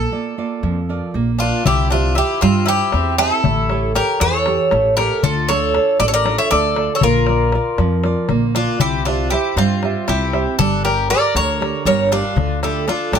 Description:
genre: greek folk, Greek bouzouki band.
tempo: 235 BPM (eighths).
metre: 7/8.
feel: straight.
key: unclear.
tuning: A4 = 440 Hz.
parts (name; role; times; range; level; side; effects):
Greek bouzouki; melody; 0.0-13.2 s; F4 to E5; -19 LUFS; equal; none.
nylon-string guitar; accompaniment; 0.0-13.2 s; D3 to E5; -21 LUFS; right 7 dB; none.
upright bass; bass; 0.0-13.2 s; G1 to G2; -21 LUFS; left 1 dB; none.
Greek bouzouki; second line; 1.4-13.2 s; C4 to C#5; -24 LUFS; left 6 dB; none.
darbuka; percussion; 1.7-13.2 s; none; -22 LUFS; left 7 dB; none.
room: light reverb.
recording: close, detailed microphones.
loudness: -15 LUFS.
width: side -7 dB against mid.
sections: 0.0-1.7 A section; 1.7-13.2 B section.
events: none.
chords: 0.0 Bb; 1.7 C; 3.4 A7; 5.2 Dm; 7.0 Bb; 8.8 C; 10.6 Gm; 12.4 Dm.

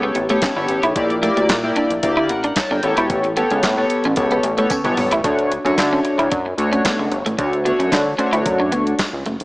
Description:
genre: early-eighties boogie funk.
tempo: 112 BPM.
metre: 4/4.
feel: straight.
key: D major.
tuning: A4 = 439 Hz.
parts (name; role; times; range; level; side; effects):
chorused polysynth; accompaniment; 0.0-8.9 s; A3 to A5; -19 LUFS; left 1 dB; none.
clean electric guitar; riff; 0.0-9.4 s; A3 to E4; -22 LUFS; right 1 dB; lush chorus.
chorused synth bass; bass; 0.0-9.4 s; E1 to D3; -22 LUFS; equal; none.
crisp 8-bit digital drum machine; drums; 0.1-9.4 s; handclaps, hi-hat, kick drum, snare drum, toms; -23 LUFS; equal; none.
tambourine; percussion; 0.4-9.1 s; none; -37 LUFS; right 2 dB; none.
room: moderate echo chamber reverb, RT60 2.2 s.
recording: small speaker sound.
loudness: -16 LUFS.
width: side -22 dB against mid.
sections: 0.0-5.2 A section; 5.2-9.4 B section.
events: drum fill 4.7-5.2.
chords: 0.0 A9; 1.0 Gm6/Bb; 2.8 A9; 5.2 Dmaj7.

